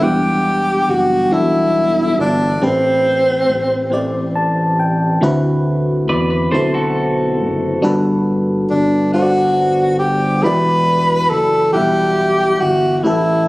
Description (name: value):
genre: slow six-eight R&B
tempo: 46 BPM (dotted quarters)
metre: 6/8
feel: straight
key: E minor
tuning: A4 = 440 Hz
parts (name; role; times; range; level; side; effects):
- breathy tenor saxophone; melody; 0.0-4.4, 8.7-13.5 s; C4 to B4; -14 LUFS; equal; none
- FM electric piano; accompaniment; 0.0-13.5 s; A2 to A5; -18 LUFS; left 1 dB; chorus
- round analog bass; bass; 0.0-13.5 s; E1 to E2; -21 LUFS; equal; none
- clean electric guitar; second line; 6.1-7.8 s; F#4 to D5; -20 LUFS; right 1 dB; spring reverb
room: light reverb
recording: recorded on a phone in the room, club reverb, compression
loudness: -13 LUFS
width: side -19 dB against mid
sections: 0.0-13.5 A section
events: FM electric piano fill 3.9-5.2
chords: 0.0 Em9; 2.6 Am9; 5.2 D13; 7.8 Gmaj9; 10.4 Em9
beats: | 0.00 1.30 | 2.61 3.91 | 5.22 6.52 | 7.83 9.13 | 10.43 11.74 | 13.04